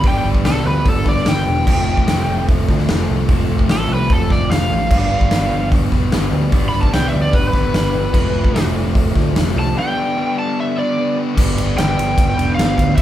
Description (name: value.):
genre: classic rock.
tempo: 148 BPM.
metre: 4/4.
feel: straight.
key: G mixolydian.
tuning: A4 = 440 Hz.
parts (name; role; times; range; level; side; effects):
overdriven slide guitar; melody; 0.0-13.0 s; A4 to B5; -21 LUFS; equal; none.
overdriven electric guitar; riff; 0.0-13.0 s; F2 to D4; -23 LUFS; right 2 dB; none.
sludgy distorted guitar; riff; 0.0-13.0 s; F3 to B4; -24 LUFS; left 6 dB; overdrive.
picked electric bass; bass; 0.0-13.0 s; E1 to D2; -20 LUFS; equal; none.
huge arena drum kit; drums; 0.0-13.0 s; crash cymbal, hi-hat, kick drum, ride cymbal, snare drum; -17 LUFS; equal; none.
room: moderate large studio reverb, RT60 0.8 s.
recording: band playing live in one room.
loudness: -14 LUFS.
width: side -12 dB against mid.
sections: 0.0-11.4 A section; 11.4-13.0 B section.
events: electric slide guitar solo 0.0-11.4; break 9.8-11.4.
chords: 0.0 G; 1.7 F; 4.9 G; 8.1 F; 9.8 G.